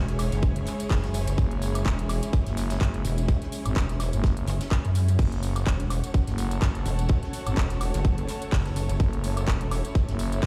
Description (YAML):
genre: bass house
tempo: 126 BPM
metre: 4/4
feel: swing 56% on 16ths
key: F# minor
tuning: A4 = 440 Hz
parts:
  - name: dark chamber string section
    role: sustained chords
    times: 0.0-10.5 s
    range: G#3 to C#5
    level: -39 LUFS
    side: equal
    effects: sidechain pumping, low-pass filter
  - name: pulsing pluck wobble bass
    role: bass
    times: 0.0-9.8 s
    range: E1 to F#2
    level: -28 LUFS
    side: equal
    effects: chorus, overdrive, sidechain pumping
  - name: airy breathy pad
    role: texture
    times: 0.0-10.5 s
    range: C#4 to B5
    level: -40 LUFS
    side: equal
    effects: chorus, sidechain pumping
  - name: garage drum kit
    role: drums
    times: 0.1-10.5 s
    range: crash cymbal, handclaps, hi-hat, tambourine, woodblock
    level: -38 LUFS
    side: equal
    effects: none
  - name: loose indie drum kit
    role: drums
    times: 0.1-10.5 s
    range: hi-hat, ride cymbal, snare drum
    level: -49 LUFS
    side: equal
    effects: none
  - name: electronic kick drum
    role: drums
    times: 0.4-10.5 s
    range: none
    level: -24 LUFS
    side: equal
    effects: none
  - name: growling FM bass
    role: bass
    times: 1.4-10.5 s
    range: F#1 to G#1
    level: -30 LUFS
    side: equal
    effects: tube saturation, sidechain pumping
room: little or no reverb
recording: played on a big sound system in a bare room, large studio reverb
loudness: -26 LUFS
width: mono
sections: 0.0-10.5 A section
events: none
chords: 0.0 C#m; 5.2 F#m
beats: 0.43 0.90 | 1.38 1.86 2.33 2.81 | 3.29 3.76 4.24 4.71 | 5.19 5.67 6.14 6.62 | 7.09 7.57 8.05 8.52 | 9.00 9.47 9.95 10.43